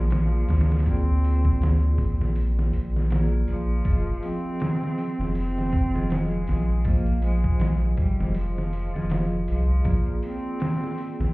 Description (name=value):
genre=trip hop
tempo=80 BPM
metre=4/4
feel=swing 57% on 16ths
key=F dorian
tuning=A4 = 440 Hz
part: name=clear cello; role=melody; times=0.0-11.3 s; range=F3 to C4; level=-32 LUFS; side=right 1 dB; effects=tape echo
part: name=vibraphone with medium hard mallets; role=accompaniment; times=0.0-11.3 s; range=F3 to Eb5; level=-31 LUFS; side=equal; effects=tremolo, tape echo
part: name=soft dub sub bass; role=bass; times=0.0-11.3 s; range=F1 to D2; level=-23 LUFS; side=equal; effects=none
part: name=trip hop sampler-style drum kit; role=drums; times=0.1-11.3 s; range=hi-hat, kick drum, snare drum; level=-26 LUFS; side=equal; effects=studio ambience
room=studio reverb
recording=heard muffled through a wall, club reverb, EQ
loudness=-21 LUFS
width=side -21 dB against mid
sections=0.0-11.3 A section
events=none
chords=0.0 Bb7; 3.9 Fm7; 9.9 Bb7